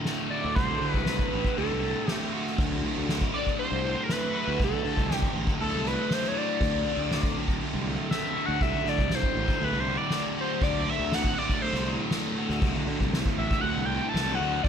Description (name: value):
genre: psychedelic rock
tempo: 119 BPM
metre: 4/4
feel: straight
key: D mixolydian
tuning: A4 = 440 Hz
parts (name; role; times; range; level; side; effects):
- string machine, cellos; sustained chords; 0.0-14.7 s; F#3 to D4; -41 LUFS; right 3 dB; none
- fuzz guitar; riff; 0.0-14.7 s; D2 to F#4; -31 LUFS; left 1 dB; distortion, phaser
- soft-mallet drum kit; drums; 0.0-14.7 s; kick drum, ride cymbal, snare drum; -29 LUFS; equal; none
- overdriven synth lead; melody; 0.3-14.7 s; A4 to A5; -30 LUFS; equal; phaser, digital delay
- fuzz fingered electric bass; bass; 0.4-14.7 s; A1 to D3; -32 LUFS; equal; overdrive
room: little or no reverb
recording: none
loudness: -25 LUFS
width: side -8 dB against mid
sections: 0.0-14.7 A section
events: analog synth lead solo 0.0-14.7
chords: 0.0 D